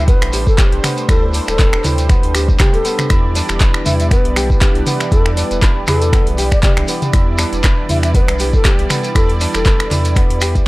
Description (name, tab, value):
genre	afro house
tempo	119 BPM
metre	4/4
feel	swing 55% on 16ths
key	E minor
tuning	A4 = 444 Hz
part	breathy bass bansuri	melody	0.0-9.9 s	A4 to E5	-23 LUFS	left 2 dB	analog delay
part	warm analog pad	sustained chords	0.0-10.7 s	E3 to B4	-26 LUFS	right 1 dB	chorus, sidechain pumping
part	kora	arpeggios	0.0-10.7 s	B3 to B4	-22 LUFS	equal	sidechain pumping, analog delay
part	mellow synth brass	stabs	0.0-10.7 s	G3 to D5	-26 LUFS	right 4 dB	chorus, phaser, sidechain pumping, analog delay
part	warm sub bass	bass	0.0-10.6 s	D1 to E2	-18 LUFS	equal	tube saturation, sidechain pumping
part	afro-pop drum kit	drums	0.1-10.6 s	finger snaps, handclaps, hi-hat, toms	-20 LUFS	equal	none
part	electronic kick drum	drums	0.1-10.6 s	none	-13 LUFS	equal	none
part	shekere	percussion	0.1-10.6 s	none	-26 LUFS	right 1 dB	none
room	digital ambience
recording	dry, gritty hardware recording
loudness	-12 LUFS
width	side -20 dB against mid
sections	0.0-10.7 A section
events	none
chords	0.0 D7sus4; 3.1 Em7